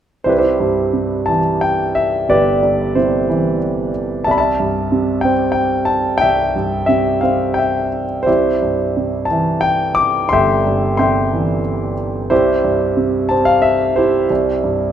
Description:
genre	classical, lyrical solo piano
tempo	90 BPM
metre	3/4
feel	rubato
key	C major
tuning	A4 = 438 Hz
part	warm concert grand piano	solo	0.2-14.9 s	G1 to D6	-14 LUFS	equal	none
room	moderate recital hall reverb, RT60 1.6 s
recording	none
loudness	-14 LUFS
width	side -9 dB against mid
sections	0.2-14.9 A section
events	none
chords	0.2 Cmaj7; 4.3 Am7/C; 8.3 C

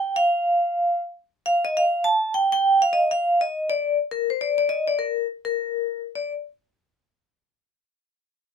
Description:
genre	jazz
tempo	204 BPM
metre	4/4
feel	swing 59% on 8ths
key	Bb major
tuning	A4 = 439 Hz
part	vibraphone with medium hard mallets	solo	0.0-6.3 s	Bb4 to A5	-20 LUFS	equal	none
room	little or no reverb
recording	minimal, uncompressed stereo recording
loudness	-20 LUFS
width	side -7 dB against mid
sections	0.0-6.1 A section; 6.1-7.3 B section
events	none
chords	none

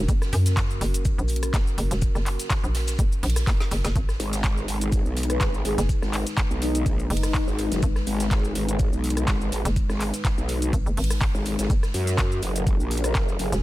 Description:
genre	bass house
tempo	124 BPM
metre	4/4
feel	swing 54% on 16ths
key	G# minor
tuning	A4 = 440 Hz
part	breathy flute-like synth lead	melody	0.0, 5.3-7.6, 13.0-13.6 s	D#4 to B4	-32 LUFS	left 1 dB	ensemble chorus, ping-pong delay
part	dark analog pad	sustained chords	0.0-13.6 s	G#3 to B4	-34 LUFS	left 2 dB	chorus, sidechain pumping
part	hollow knocking FM bass	bass	0.0-13.6 s	E1 to F#2	-24 LUFS	equal	tube saturation, sidechain pumping
part	electronic kick drum	drums	0.1-13.3 s	none	-23 LUFS	equal	none
part	garage drum kit	drums	0.1-13.6 s	handclaps, hi-hat, rim click, shaker, snare drum	-31 LUFS	equal	none
part	oversized low-tuned drum kit	drums	0.1-13.6 s	hi-hat, shaker, snare drum	-39 LUFS	equal	high-pass filter on hats, high-pass filter on snare, high-pass filter on perc, high-pass filter on room
part	growl bass	bass	4.2-13.5 s	F#1 to F#2	-25 LUFS	equal	chorus, overdrive, sidechain pumping
room	digital ambience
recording	none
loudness	-21 LUFS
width	side -16 dB against mid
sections	0.0-13.6 A section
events	drum fill 3.5-4.0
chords	0.0 F#; 4.0 G#m; 11.7 F#

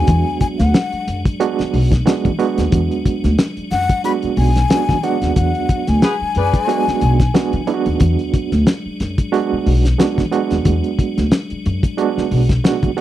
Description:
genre	funk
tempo	91 BPM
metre	4/4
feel	swing 56% on 16ths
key	unclear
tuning	A4 = 439 Hz
part	breathy jazz flute	melody	0.0-7.7 s	F#5 to B5	-21 LUFS	left 6 dB	none
part	tonewheel organ	sustained chords	0.0-13.0 s	F#3 to D4	-28 LUFS	left 3 dB	chorus vibrato, wide subtle chorus
part	overdriven reed electric piano	stabs	0.0-13.0 s	G#3 to F#4	-19 LUFS	right 7 dB	fast tremolo
part	upright bass	bass	0.0-12.9 s	B1 to E3	-17 LUFS	equal	none
part	cloth-damped thuddy drum kit	drums	0.1-13.0 s	hi-hat, kick drum, snare drum	-17 LUFS	left 1 dB	none
part	warm horn section	second line	6.0-6.8 s	F#4 to D5	-21 LUFS	left 2 dB	none
room	little or no reverb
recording	dry, close 1970s-style studio recording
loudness	-14 LUFS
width	side -13 dB against mid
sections	0.0-13.0 A section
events	band accent 5.4-8.0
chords	0.0 E9 (rootless)

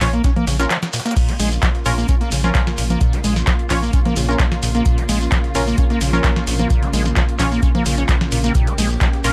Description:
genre	acid house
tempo	130 BPM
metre	4/4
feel	straight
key	Bb dorian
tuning	A4 = 441 Hz
part	acid bass, square	riff	0.0-9.3 s	Bb2 to Db4	-25 LUFS	equal	overdrive, lush chorus, cassette tape, tape echo
part	band-passed chord stab	stabs	0.0-9.3 s	Db4 to Db5	-26 LUFS	equal	chorus, tape echo
part	round analog bass	bass	0.0-9.3 s	Bb1	-23 LUFS	equal	sidechain pumping
part	booming analog drum machine	drums	0.0-9.3 s	congas, crash cymbal, handclaps, hi-hat, snare drum	-25 LUFS	equal	studio reverb
part	breakbeat sampler-style drum kit	drums	0.0-9.3 s	hi-hat, shaker, snare drum	-37 LUFS	equal	none
part	electronic kick drum	drums	0.0-9.1 s	none	-20 LUFS	equal	studio reverb
part	shekere	percussion	0.0-9.3 s	none	-33 LUFS	equal	none
part	muted studio string section	sustained chords	1.2-9.3 s	Db3 to G4	-29 LUFS	equal	sidechain pumping
room	light reverb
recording	dry, gritty hardware recording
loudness	-18 LUFS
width	mono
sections	0.0-9.3 A section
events	break 0.7-1.2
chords	0.0 Bbm

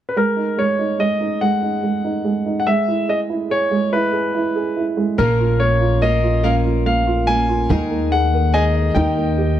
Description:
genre	pop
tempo	48 BPM (dotted quarters)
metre	6/8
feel	straight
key	unclear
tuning	A4 = 440 Hz
part	clear concert grand piano	melody	0.1-9.6 s	A#4 to G#5	-20 LUFS	left 1 dB	none
part	warm upright piano	accompaniment	0.2-9.6 s	D#3 to D#5	-20 LUFS	right 4 dB	none
part	picked steel-string acoustic guitar	arpeggios	5.2-9.6 s	A#2 to A#4	-26 LUFS	left 4 dB	none
part	upright bass	bass	5.2-9.6 s	A#1 to D#2	-18 LUFS	left 2 dB	none
room	small room ambience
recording	dry, close 1970s-style studio recording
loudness	-16 LUFS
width	side -11 dB against mid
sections	0.2-9.6 A section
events	none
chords	0.2 G#5; 2.7 E/G#; 5.2 A#m; 7.7 D#sus4; 9.0 D#

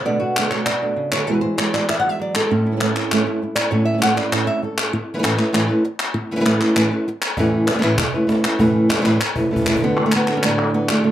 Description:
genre	flamenco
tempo	197 BPM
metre	4/4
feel	straight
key	A major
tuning	A4 = 440 Hz
part	flamenco guitar	melody	0.0-11.1 s	A2 to F#5	-18 LUFS	equal	none
part	flamenco guitar	stabs	0.0-4.7, 9.8-11.1 s	E2 to F#4	-24 LUFS	right 4 dB	none
part	palmas hand claps	percussion	0.4-11.0 s	none	-22 LUFS	left 2 dB	none
part	cajon	percussion	7.4-9.8 s	none	-26 LUFS	equal	none
room	moderate small room reverb, RT60 0.5 s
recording	none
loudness	-16 LUFS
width	side -12 dB against mid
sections	0.0-4.9 A section; 4.9-9.8 B section; 9.8-11.1 C section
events	nylon-string guitar solo 0.0-4.9; drum fill 9.1-9.8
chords	0.1 Bm7; 1.3 Eadd9; 2.5 A; 4.9 Aadd9; 9.8 D

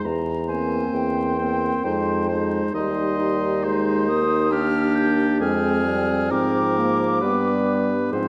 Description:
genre	classical, slow romantic movement for wind quintet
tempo	67 BPM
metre	3/4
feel	rubato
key	C minor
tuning	A4 = 440 Hz
part	silver concert flute	melody	0.0-8.1 s	G5 to G6	-30 LUFS	equal	none
part	clear oboe	second line	0.0-8.3 s	G4 to Eb5	-31 LUFS	equal	none
part	clear clarinet	accompaniment	0.0-8.3 s	Bb3 to Eb4	-28 LUFS	equal	none
part	mellow French horn	accompaniment	0.0-8.3 s	F3 to Bb3	-28 LUFS	equal	none
part	mellow bassoon	bass	0.1-8.3 s	Eb2 to Ab2	-27 LUFS	equal	none
room	wet scoring stage reverb, RT60 1.6 s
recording	vinyl crackle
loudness	-22 LUFS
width	mono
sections	0.0-8.3 A section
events	none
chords	0.1 C7/E; 1.8 Fm7; 2.7 Cm/Eb; 5.4 Fm; 7.2 G

